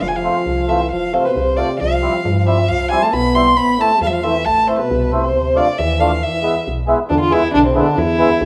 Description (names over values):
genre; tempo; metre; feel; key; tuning
klezmer; 136 BPM; 2/4; straight; unclear; A4 = 441 Hz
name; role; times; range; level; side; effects
dark violin; melody; 0.0-8.5 s; C4 to C6; -19 LUFS; equal; none
mellow trombone; second line; 0.0-8.5 s; E2 to B3; -23 LUFS; equal; none
woody FM bass; bass; 0.0-8.5 s; F1 to G2; -24 LUFS; equal; none
mellow accordion; accompaniment; 0.2-8.3 s; G3 to F4; -22 LUFS; equal; none
room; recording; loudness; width
moderate lush hall reverb, RT60 2.5 s; rough home demo mix; -16 LUFS; mono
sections
0.0-7.1 A section; 7.1-8.5 B section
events
none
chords
0.0 F; 1.8 C; 3.6 Am; 5.3 Dm; 6.2 E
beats
| 0.03 0.47 | 0.92 1.36 | 1.81 2.25 | 2.69 3.14 | 3.58 4.02 | 4.46 4.90 | 5.34 5.79 | 6.22 6.66 | 7.10 7.54 | 7.98 8.41